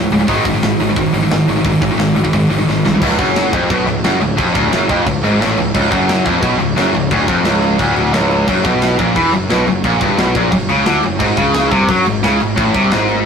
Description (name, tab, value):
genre	heavy metal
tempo	176 BPM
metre	4/4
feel	straight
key	unclear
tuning	A4 = 439 Hz
part	heavy high-gain guitar	riff	0.0-13.2 s	C#2 to G#3	-13 LUFS	equal	distortion
part	fuzz picked electric bass	bass	0.0-13.2 s	C#1 to F#2	-19 LUFS	equal	overdrive
part	tight metal drum kit	drums	0.1-13.2 s	crash cymbal, hi-hat, kick drum, snare drum	-20 LUFS	equal	none
room	moderate small room reverb, RT60 0.5 s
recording	rough rehearsal-room recording, tube saturation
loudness	-12 LUFS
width	side -6 dB against mid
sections	0.0-3.0 A section; 3.0-13.3 B section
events	drum fill 2.7-3.0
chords	0.3 G#5; 3.0 C#; 8.5 F#5; 11.2 G#7b9